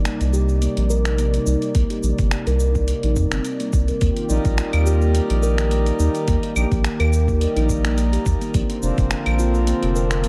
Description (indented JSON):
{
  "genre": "organic downtempo",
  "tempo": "106 BPM",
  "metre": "4/4",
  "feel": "swing 54% on 16ths",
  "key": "C minor",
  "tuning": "A4 = 439 Hz",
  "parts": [
    { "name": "warm analog pad", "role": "sustained chords", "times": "0.0-10.3 s", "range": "C3 to D5", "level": "-31 LUFS", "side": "equal", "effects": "chorus, sidechain pumping" },
    { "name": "round analog bass", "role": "bass", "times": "0.0-10.3 s", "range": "F1 to F2", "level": "-22 LUFS", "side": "equal", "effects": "none" },
    { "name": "steel tongue drum", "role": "arpeggios", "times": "0.1-10.3 s", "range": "Bb3 to Bb4", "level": "-27 LUFS", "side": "equal", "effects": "analog delay" },
    { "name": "dusty soul sampler-style drum kit", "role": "drums", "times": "0.1-10.3 s", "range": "cabasa, claves, finger snaps, hi-hat", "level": "-32 LUFS", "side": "equal", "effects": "none" },
    { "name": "electronic kick drum", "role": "drums", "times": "1.7-9.1 s", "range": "none", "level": "-25 LUFS", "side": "equal", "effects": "overdrive" },
    { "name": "pedal harmonium", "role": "accompaniment", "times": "4.3-10.3 s", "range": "F3 to D5", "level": "-31 LUFS", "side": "equal", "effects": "sidechain pumping, analog delay" }
  ],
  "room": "little or no reverb",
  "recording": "echo-heavy mix",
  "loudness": "-20 LUFS",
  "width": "mono",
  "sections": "0.0-10.3 A section",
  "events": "none",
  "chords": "0.0 Cm7; 4.0 Ebmaj7; 8.5 Bbadd9",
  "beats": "0.05 0.62 1.19 | 1.75 2.32 2.88 3.45 | 4.01 4.58 5.15 5.71 | 6.28 6.84 7.41 7.98 | 8.54 9.11 9.68 10.24"
}